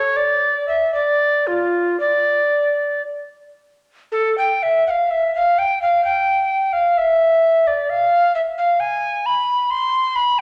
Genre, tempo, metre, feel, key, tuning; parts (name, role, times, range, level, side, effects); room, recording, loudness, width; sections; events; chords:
classical, baroque-style fantasia for unaccompanied recorder; 54-68 BPM; 3/4; rubato; D minor; A4 = 437 Hz
alto recorder; solo; 0.0-10.4 s; F4 to C6; -18 LUFS; equal
wet recital hall reverb, RT60 1.3 s; -18 LUFS; mono
0.0-4.1 A section; 4.1-10.4 A section